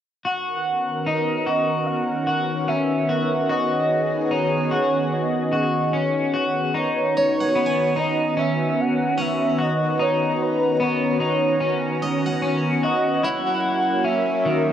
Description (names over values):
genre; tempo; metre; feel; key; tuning
dream pop; 74 BPM; 4/4; straight; B major; A4 = 440 Hz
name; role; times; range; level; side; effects
warm velvety synth lead; melody; 0.3-14.7 s; B4 to F#5; -24 LUFS; right 2 dB; chorus, digital delay
lush unison pad; sustained chords; 0.5-14.7 s; D#3 to A#5; -23 LUFS; equal; chorus, phaser
electric guitar at the edge of break-up; arpeggios; 0.3-14.7 s; D#3 to F#4; -24 LUFS; left 2 dB; lush chorus, digital delay
harpsichord; texture; 7.2-14.7 s; C#5 to G#5; -34 LUFS; right 1 dB; digital delay
room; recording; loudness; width
moderate plate reverb, RT60 2.9 s; worn, warbling old tape, cassette tape, warbly pitch drift; -19 LUFS; side -10 dB against mid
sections
0.3-6.7 A section; 6.7-14.7 B section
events
none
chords
0.3 Bmaj9; 13.2 F#7